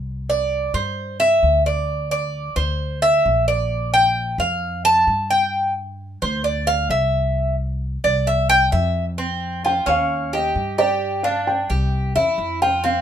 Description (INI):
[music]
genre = latin, Cuban son and guajira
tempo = 132 BPM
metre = 4/4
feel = straight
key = unclear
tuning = A4 = 440 Hz
[part]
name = upright bass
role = bass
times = 0.0-13.0 s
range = Bb1 to G2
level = -24 LUFS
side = left 1 dB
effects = none
[part]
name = Cuban tres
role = arpeggios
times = 0.3-13.0 s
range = C4 to A5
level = -19 LUFS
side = equal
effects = none
[part]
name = felt-muted upright piano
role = melody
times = 9.7-13.0 s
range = D5 to G5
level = -20 LUFS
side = equal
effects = none
[sound]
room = moderate studio reverb, RT60 0.6 s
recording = minimal, uncompressed stereo recording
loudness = -17 LUFS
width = side -9 dB against mid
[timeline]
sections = 0.0-9.2 A section; 9.2-13.0 B section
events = Cuban tres solo 0.0-9.2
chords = 0.1 C; 1.9 Bbadd9; 3.7 Bb5; 5.5 G5; 9.2 F5; 10.1 Eb7; 11.0 G5; 11.9 C